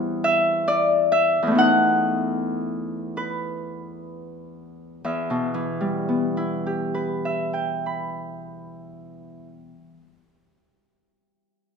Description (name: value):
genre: classical, solo harp piece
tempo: 30-48 BPM (dotted quarters)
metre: 6/8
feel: rubato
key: E minor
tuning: A4 = 443 Hz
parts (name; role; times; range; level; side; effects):
- Celtic harp; solo; 0.0-10.2 s; E2 to B5; -21 LUFS; left 1 dB; none
room: moderate recital hall reverb, RT60 1.3 s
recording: minimal, uncompressed stereo recording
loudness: -21 LUFS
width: side -6 dB against mid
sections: 0.0-5.1 A section; 5.1-8.7 B section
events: slowing down 0.0-5.1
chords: 0.0 Em; 1.6 B7/E; 5.1 Em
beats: 0.24 | 1.58 3.17 | 5.06 6.90